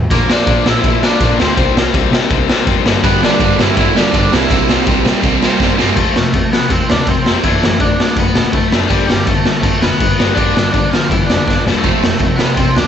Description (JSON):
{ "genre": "punk rock", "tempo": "164 BPM", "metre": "4/4", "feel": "straight", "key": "unclear", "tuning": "A4 = 440 Hz", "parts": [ { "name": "overdriven semi-hollow guitar", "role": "melody", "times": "0.1-12.9 s", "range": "E3 to E5", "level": "-18 LUFS", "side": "right 1 dB", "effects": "none" }, { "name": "distorted electric guitar", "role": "riff", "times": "0.1-12.9 s", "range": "F2 to D4", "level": "-18 LUFS", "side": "left 15 dB", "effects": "distortion" }, { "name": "rich double bass", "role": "bass", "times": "0.1-12.8 s", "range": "E1 to C3", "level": "-19 LUFS", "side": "equal", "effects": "none" }, { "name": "raw garage drum kit", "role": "drums", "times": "0.1-12.9 s", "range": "crash cymbal, kick drum, ride cymbal, snare drum", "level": "-14 LUFS", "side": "equal", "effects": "none" }, { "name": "crunchy overdriven guitar", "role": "riff", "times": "3.0-6.0, 11.8-12.9 s", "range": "F2 to C4", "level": "-17 LUFS", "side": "right 13 dB", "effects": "none" } ], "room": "little or no reverb", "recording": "nothing above 8.0 kHz", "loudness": "-11 LUFS", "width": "side -8 dB against mid", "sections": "0.1-6.0 A section; 6.0-12.9 B section", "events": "drum fill 5.6-6.0, 11.5-11.9", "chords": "0.1 Bb; 1.6 C5; 2.9 G; 4.3 C; 6.0 F; 7.4 D/F#; 8.9 G; 11.9 F" }